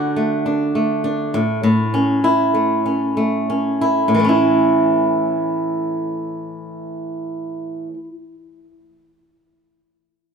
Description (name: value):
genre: pop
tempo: 90-105 BPM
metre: 4/4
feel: straight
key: A major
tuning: A4 = 441 Hz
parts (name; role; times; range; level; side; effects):
- flamenco guitar; accompaniment; 0.0-8.1 s; A2 to F#4; -17 LUFS; right 1 dB; none
room: moderate plate reverb, RT60 3.6 s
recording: none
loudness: -16 LUFS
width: side -6 dB against mid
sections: 0.0-4.1 A section; 4.1-6.8 B section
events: slowing down 0.0-4.1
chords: 0.0 D; 1.3 A